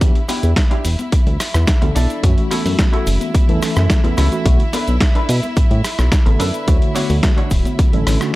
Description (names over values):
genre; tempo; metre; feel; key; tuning
nu-disco, nu disco; 108 BPM; 4/4; straight; unclear; A4 = 440 Hz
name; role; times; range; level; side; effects
mellow tine electric piano; accompaniment; 0.0-8.4 s; D3 to C#5; -23 LUFS; equal; medium stereo tremolo, vintage 12-bit sampler grit, sidechain pumping, analog delay
warm chamber violin section; sustained chords; 0.0-8.4 s; E4 to E5; -28 LUFS; right 1 dB; sidechain pumping
chorused synth bass; bass; 0.0-8.2 s; D1 to B2; -16 LUFS; equal; none
dusty soul sampler-style drum kit; drums; 0.0-8.3 s; hi-hat, rim click, snare drum; -22 LUFS; equal; none
electronic kick drum; drums; 0.0-7.9 s; none; -14 LUFS; equal; overdrive
cabasa and congas; percussion; 0.0-8.3 s; none; -28 LUFS; left 3 dB; none
semi-hollow electric guitar; riff; 0.3-7.7 s; D4 to C#5; -25 LUFS; equal; lush chorus, analog delay
room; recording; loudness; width
little or no reverb; dry, gritty hardware recording; -13 LUFS; side -18 dB against mid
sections
0.0-8.4 A section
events
none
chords
0.0 Em7; 2.2 F#m7; 4.5 Bm7; 6.7 Dmaj7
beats
| 0.01 0.57 1.12 1.68 | 2.23 2.79 3.35 3.90 | 4.46 5.01 5.57 6.12 | 6.68 7.24 7.79 8.35